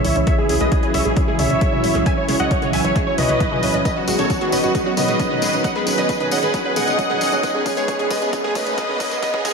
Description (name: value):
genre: uplifting trance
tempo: 134 BPM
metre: 4/4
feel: straight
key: C# minor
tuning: A4 = 440 Hz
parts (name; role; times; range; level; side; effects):
- dense compressed supersaw; melody; 0.0-9.5 s; F#4 to G#5; -22 LUFS; right 1 dB; sidechain pumping, low-pass filter, diffuse ambient delay
- bright concert grand piano; second line; 0.0-9.5 s; F#4 to G#5; -27 LUFS; equal; sidechain pumping, low-pass filter, ping-pong delay
- lush unison pad; sustained chords; 0.0-9.5 s; C#3 to G#4; -23 LUFS; equal; chorus, sidechain pumping
- analog pluck; arpeggios; 0.0-9.5 s; G#3 to C#5; -25 LUFS; right 2 dB; chorus, sidechain pumping, ping-pong delay
- plucky analog bass; bass; 0.0-9.5 s; F#1 to C#2; -27 LUFS; equal; sidechain pumping
- punchy analog drum machine; drums; 0.0-9.5 s; hi-hat, tambourine, toms; -27 LUFS; left 2 dB; overdrive
- electronic kick drum; drums; 0.3-9.5 s; none; -22 LUFS; equal; overdrive
- riser; sound effects; 6.7-9.5 s; none; -34 LUFS; right 1 dB; none
room: wet lush hall reverb, RT60 2.0 s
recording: dreamy mix soaked in reverb, high-pass filter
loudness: -16 LUFS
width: side -5 dB against mid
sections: 0.0-9.5 A section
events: build-up 0.0-9.5; filter sweep on supersaw synth 0.0-9.5; filter sweep on synth pluck 0.0-9.5; filter sweep 0.0-9.5; drum fill 3.9-9.5; riser 6.7-9.5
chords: 0.0 C#m; 3.9 B; 7.4 G#m